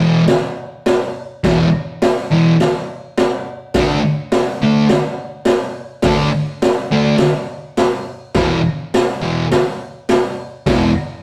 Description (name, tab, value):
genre	garage rock duo or trio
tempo	104 BPM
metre	4/4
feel	straight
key	unclear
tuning	A4 = 440 Hz
part	fuzz guitar	riff	0.0-10.9 s	E2 to D4	-17 LUFS	equal	distortion
part	raw garage drum kit	drums	0.3-10.8 s	hi-hat, kick drum, snare drum	-19 LUFS	equal	none
room	moderate stone room reverb, RT60 1.3 s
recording	rough rehearsal-room recording, tube saturation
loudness	-17 LUFS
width	mono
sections	0.0-11.2 A section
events	none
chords	0.0 E5; 3.7 D5; 8.4 E5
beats	0.27 0.85 | 1.43 2.01 2.58 3.16 | 3.74 4.32 4.89 5.47 | 6.05 6.62 7.20 7.78 | 8.35 8.93 9.51 10.08 | 10.66